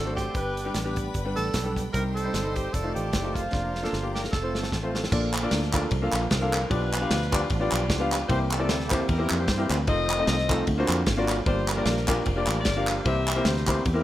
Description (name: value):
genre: uptempo gospel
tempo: 151 BPM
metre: 4/4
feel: swing 56% on 8ths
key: Bb major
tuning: A4 = 438 Hz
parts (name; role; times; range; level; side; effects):
- breathy tenor saxophone; melody; 0.0-4.7 s; F4 to Bb4; -32 LUFS; right 3 dB; none
- clear saxophone section; melody; 0.0-14.0 s; C4 to F5; -34 LUFS; left 3 dB; none
- clear concert grand piano; accompaniment; 0.0-14.0 s; G2 to F5; -28 LUFS; left 1 dB; none
- bright tonewheel organ; sustained chords; 0.0-14.0 s; D3 to A4; -36 LUFS; right 5 dB; none
- clear studio string section; sustained chords; 0.0-5.1 s; Eb4 to C6; -41 LUFS; left 3 dB; none
- fingered electric bass; bass; 0.0-14.0 s; F1 to G2; -29 LUFS; equal; none
- warm soul drum kit; drums; 0.2-14.0 s; crash cymbal, hi-hat, kick drum, ride cymbal, snare drum; -29 LUFS; equal; none
- group handclap; percussion; 5.3-13.8 s; none; -31 LUFS; right 1 dB; none
room: little or no reverb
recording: rough home demo mix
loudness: -23 LUFS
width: side -13 dB against mid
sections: 0.0-5.1 A section; 5.1-14.0 B section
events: drum fill 3.5-5.1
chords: 0.3 G; 1.9 Cm; 2.7 F7; 3.5 Bb/F; 4.3 F; 5.1 Bbmaj7; 6.7 G7/B; 8.3 C7; 9.9 F7; 10.7 D7alt; 11.5 Gm7; 13.1 C7